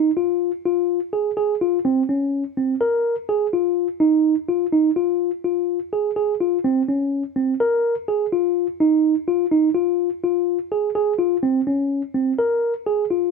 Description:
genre	progressive instrumental, progressive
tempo	125 BPM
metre	5/4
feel	straight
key	unclear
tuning	A4 = 441 Hz
part	mellow tine electric piano	solo	0.0-13.3 s	C4 to Bb4	-18 LUFS	equal	none
room	light reverb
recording	band playing live in one room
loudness	-18 LUFS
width	side -4 dB against mid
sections	0.0-13.3 A section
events	none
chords	none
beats	| 0.41 0.89 1.37 1.85 2.33 | 2.81 3.29 3.77 4.25 4.73 | 5.21 5.69 6.17 6.65 7.13 | 7.61 8.09 8.57 9.05 9.53 | 10.01 10.49 10.97 11.45 11.92 | 12.40 12.88

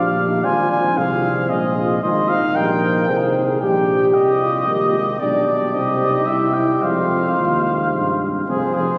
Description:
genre	classical, brass quintet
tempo	113 BPM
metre	3/4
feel	straight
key	F minor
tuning	A4 = 439 Hz
part	clear trumpet	melody	0.0-9.0 s	Ab4 to Ab5	-24 LUFS	equal	none
part	dark trumpet	second line	0.0-9.0 s	G4 to D5	-25 LUFS	equal	none
part	warm French horn	accompaniment	0.0-9.0 s	C4 to C5	-24 LUFS	equal	none
part	warm euphonium	accompaniment	0.0-9.0 s	Eb3 to Bb3	-29 LUFS	equal	none
part	mellow tuba	bass	0.0-8.9 s	F1 to G2	-26 LUFS	equal	none
room	wet cathedral reverb, RT60 4.7 s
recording	recorded on a phone in the room, studio reverb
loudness	-18 LUFS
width	mono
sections	0.0-8.5 A section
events	none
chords	0.4 Fm/Ab; 2.0 Ab; 3.6 Abmaj13; 5.2 G/B; 5.7 Cm; 6.3 C; 6.8 Fm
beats	| 0.45 0.97 1.50 | 2.03 2.56 3.08 | 3.62 4.15 4.68 | 5.21 5.75 6.28 | 6.83 7.39 7.94 | 8.49

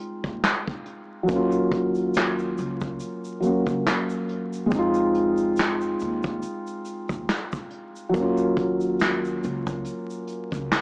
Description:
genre	lo-fi hip hop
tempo	70 BPM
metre	4/4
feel	swing 56% on 16ths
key	Eb dorian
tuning	A4 = 440 Hz
part	felt-muted upright piano	accompaniment	0.0-10.8 s	Gb3 to Gb4	-24 LUFS	equal	cassette tape, low-pass filter
part	upright bass	bass	0.2-10.7 s	Db2 to F2	-35 LUFS	equal	none
part	vintage brush drum kit	drums	0.2-10.8 s	handclaps, hi-hat, kick drum, snare drum	-26 LUFS	equal	none
part	tube shaker	percussion	1.3-10.8 s	none	-51 LUFS	right 1 dB	none
room	light reverb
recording	dry, gritty hardware recording, vinyl crackle, small speaker sound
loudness	-22 LUFS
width	side -31 dB against mid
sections	0.0-10.8 A section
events	none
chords	0.0 Fm7; 1.3 Ebm7; 4.7 Fm7; 8.1 Ebm7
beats	0.43 | 1.29 2.15 3.00 3.86 | 4.72 5.57 6.43 7.29 | 8.14 9.00 9.86 10.72

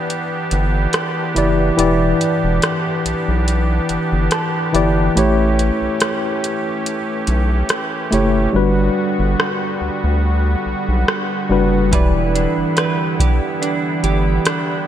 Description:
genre	contemporary R&B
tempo	71 BPM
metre	4/4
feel	swing 54% on 16ths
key	E dorian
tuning	A4 = 437 Hz
part	tine electric piano	accompaniment	0.0-14.9 s	E3 to A5	-19 LUFS	left 1 dB	medium stereo tremolo
part	pipe organ, strings celeste	sustained chords	0.0-14.9 s	D3 to G4	-23 LUFS	right 1 dB	none
part	booming analog drum machine	drums	0.1-14.7 s	hi-hat, kick drum, rim click	-20 LUFS	equal	gated reverb
part	round analog bass	bass	0.5-14.4 s	E1 to D2	-18 LUFS	equal	none
part	direct-recorded clean electric guitar	arpeggios	11.9-14.9 s	E3 to B4	-21 LUFS	right 6 dB	lush chorus, digital delay
room	light reverb, digital ambience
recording	bright 1980s-style digital production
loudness	-15 LUFS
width	side -10 dB against mid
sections	0.0-14.9 A section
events	break 0.0-11.9; tine electric piano fill 3.9-5.2; hi-hats muted 8.5-11.9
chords	0.0 Em7; 5.2 A7; 8.5 Gmaj7; 11.9 Em7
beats	0.10 0.94 | 1.78 2.63 3.48 4.32 | 5.17 6.01 6.86 7.70 | 8.54 9.39 10.24 11.08 | 11.93 12.77 13.62 14.46

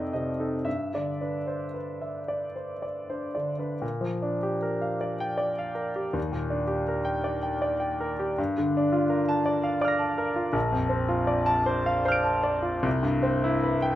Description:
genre	classical, impressionist solo piano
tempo	36-57 BPM (dotted quarters)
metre	6/8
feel	rubato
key	G major, Bb major from 3.8 s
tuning	A4 = 440 Hz
part	clear concert grand piano	solo	0.0-14.0 s	Bb1 to D7	-25 LUFS	equal	none
room	light reverb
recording	close, detailed microphones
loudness	-25 LUFS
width	side -13 dB against mid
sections	0.0-3.8 A section; 3.8-14.0 B section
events	none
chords	0.0 F9; 0.7 G6; 3.8 Bb6; 6.2 Ebmaj7; 8.4 Gm9; 10.6 Bbmaj9; 12.9 Cmaj7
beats	| 0.66 2.30 | 3.83 5.04 | 6.17 7.26 | 8.39 9.46 | 10.55 11.69 | 12.86

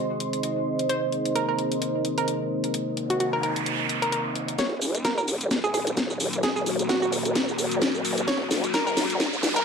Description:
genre	bass house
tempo	130 BPM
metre	4/4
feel	swing 56% on 16ths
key	Eb dorian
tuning	A4 = 441 Hz
part	dark analog pad	sustained chords	0.0-9.6 s	Bb3 to Eb5	-32 LUFS	left 1 dB	chorus, sidechain pumping
part	deep dark ambient pad	texture	0.0-9.6 s	Gb4 to C6	-30 LUFS	equal	chorus, built-in reverb, sidechain pumping
part	garage drum kit	drums	0.2-9.6 s	hi-hat, shaker, snare drum	-27 LUFS	left 1 dB	none
part	hollow square pluck	melody	0.9-9.6 s	Gb4 to Db5	-29 LUFS	right 1 dB	chorus, tape echo
part	noise sweep and riser	sound effects	3.0-9.6 s	none	-33 LUFS	right 3 dB	none
part	vowel-sweep wobble bass	bass	4.6-9.6 s	Eb1 to Eb2	-29 LUFS	equal	chorus, overdrive, sidechain pumping, high-pass filter
part	electronic kick drum	drums	4.6-9.3 s	none	-35 LUFS	equal	high-pass filter on kick
room	wet digital room reverb, RT60 0.9 s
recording	dark, warm production, high-pass filter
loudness	-23 LUFS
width	side -6 dB against mid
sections	0.0-4.6 A section; 4.6-9.6 B section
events	noise sweep 3.0-4.6; build-up 4.6-9.6; drum fill 4.6-9.6; riser 4.6-9.6; filter sweep on analog synth pad 4.6-9.6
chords	0.0 Ab; 4.6 Ebm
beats	0.43 | 0.89 1.36 1.82 2.28 | 2.74 3.20 3.66 4.12 | 4.59 5.05 5.51 5.97 | 6.43 6.89 7.36 7.82 | 8.28 8.74 9.20

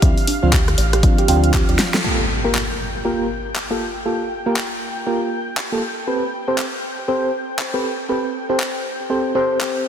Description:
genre	deep house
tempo	119 BPM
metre	4/4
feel	swing 61% on 16ths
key	G minor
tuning	A4 = 440 Hz
part	warbly dusty pluck	arpeggios	0.0-2.0 s	D4 to G5	-26 LUFS	right 6 dB	lush chorus, sidechain pumping, dub echo
part	mellow FM electric piano	stabs	0.0-9.8 s	F3 to C5	-21 LUFS	right 1 dB	chorus, tremolo, sidechain pumping, low-pass filter, digital delay
part	round analog bass	bass	0.0-1.8 s	A1 to D2	-18 LUFS	equal	sidechain pumping
part	deep house drum kit	drums	0.0-9.7 s	handclaps, hi-hat, rim click, snare drum	-24 LUFS	left 1 dB	small room reverb
part	electronic kick drum	drums	0.0-1.7 s	none	-17 LUFS	equal	small room reverb
part	analog string pad	texture	0.0-9.9 s	F5 to G5	-31 LUFS	left 2 dB	ensemble chorus, sidechain pumping
part	impact	sound effects	2.0-4.1 s	none	-27 LUFS	equal	none
room	moderate lush hall reverb, RT60 2.6 s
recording	dense, heavily limited modern master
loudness	-17 LUFS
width	side -8 dB against mid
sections	0.0-2.0 A section; 2.0-9.9 B section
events	filter sweep on synth pluck 0.0-2.0; drum fill 1.8; band accent 1.9; impact 2.0-4.1; filter sweep on FM electric piano 2.0-9.9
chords	0.0 Dm7; 2.0 Gm9; 5.8 Am7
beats	| 0.02 0.53 1.03 1.54 | 2.04 2.54 3.05 3.55 | 4.06 4.56 5.07 5.57 | 6.07 6.58 7.08 7.59 | 8.09 8.60 9.10 9.60

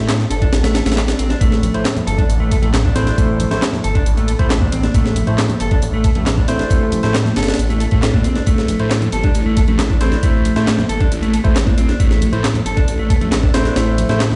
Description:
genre	breakbeat, breaks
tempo	136 BPM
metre	4/4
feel	straight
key	A minor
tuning	A4 = 439 Hz
part	mellow electric guitar	riff	0.0-14.2 s	A3 to A4	-24 LUFS	equal	tape echo
part	phased detuned saw bass	bass	0.0-14.4 s	G1 to A2	-21 LUFS	equal	phaser
part	breakbeat sampler-style drum kit	drums	0.1-14.4 s	hi-hat, kick drum, snare drum	-19 LUFS	equal	small room ambience
part	house drum kit	drums	0.1-14.3 s	handclaps, hi-hat	-31 LUFS	equal	small room ambience
part	congas	percussion	1.6-14.4 s	none	-28 LUFS	equal	none
part	barky tine electric piano	stabs	1.7-14.2 s	A3 to C5	-26 LUFS	equal	tape echo
room	light reverb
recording	played on a big sound system in a bare room, stone room reverb, nothing above 10.8 kHz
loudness	-16 LUFS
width	mono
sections	0.0-14.4 A section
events	kick drops out 0.5-1.4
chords	0.0 Am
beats	0.09 0.53 0.97 | 1.41 1.85 2.29 2.73 | 3.17 3.62 4.06 4.50 | 4.94 5.38 5.82 6.26 | 6.70 7.15 7.59 8.03 | 8.47 8.91 9.35 9.79 | 10.23 10.68 11.12 11.56 | 12.00 12.44 12.88 13.32 | 13.76 14.20

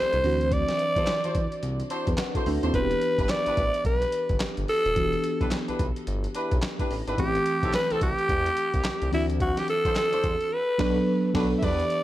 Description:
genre	R&B, new jack swing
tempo	108 BPM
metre	4/4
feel	swing 61% on 16ths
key	E minor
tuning	A4 = 440 Hz
part	breathy alto saxophone	melody	0.0-12.0 s	E4 to E5	-26 LUFS	equal	none
part	mellow FM electric piano	accompaniment	0.0-12.0 s	E3 to A5	-30 LUFS	right 1 dB	chorus, phaser
part	smooth synth bass	bass	0.0-11.8 s	D#1 to E2	-30 LUFS	equal	none
part	boom bap sampler-style drum kit	drums	0.1-12.0 s	crash cymbal, handclaps, hi-hat, kick drum, snare drum	-30 LUFS	equal	none
part	warm horn section	stabs	1.0-11.8 s	C4 to C5	-34 LUFS	equal	tape echo
room	light reverb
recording	none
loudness	-23 LUFS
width	side -14 dB against mid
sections	0.0-11.6 A section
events	FM electric piano fill 1.6-2.7; band accent 10.5-11.6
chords	0.2 D9; 2.7 Em7; 7.2 Am7; 9.1 D9; 10.5 Bm7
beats	| 0.52 1.07 1.63 2.18 | 2.74 3.29 3.85 4.40 | 4.96 5.51 6.07 6.63 | 7.18 7.74 8.29 8.85 | 9.40 9.96 10.52 11.07 | 11.63

